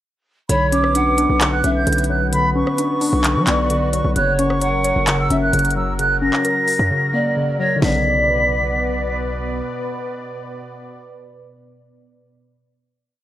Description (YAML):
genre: hip hop, trap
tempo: 131 BPM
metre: 4/4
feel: half-time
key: B harmonic minor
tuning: A4 = 443 Hz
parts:
  - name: silver concert flute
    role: melody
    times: 0.5-9.2 s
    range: B5 to B6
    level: -21 LUFS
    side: right 1 dB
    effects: low-pass filter, digital delay
  - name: mellow pan flute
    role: second line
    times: 0.5-9.2 s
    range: C#5 to F#5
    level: -23 LUFS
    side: right 2 dB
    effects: digital delay
  - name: warbly dusty pluck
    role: accompaniment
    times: 0.5-12.4 s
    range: C#3 to C#5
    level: -21 LUFS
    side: left 2 dB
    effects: chorus, low-pass filter
  - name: sweeping resonant pad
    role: sustained chords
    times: 0.5-12.2 s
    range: B2 to D5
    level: -27 LUFS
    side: right 1 dB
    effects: wide subtle chorus
  - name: hard-hitting 808-style bass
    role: bass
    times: 0.5-9.6 s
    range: F#1 to F#3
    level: -22 LUFS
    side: equal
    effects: none
  - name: trap drum kit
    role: drums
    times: 0.5-7.9 s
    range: handclaps, hi-hat, kick drum, rim click, snare drum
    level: -22 LUFS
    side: equal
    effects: none
room: little or no reverb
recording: none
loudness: -16 LUFS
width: side -12 dB against mid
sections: 0.5-7.8 hook; 7.8-11.5 final chord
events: silent gap 6.9-7.8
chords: 0.5 Bmadd9; 4.2 F#; 7.8 Bmadd9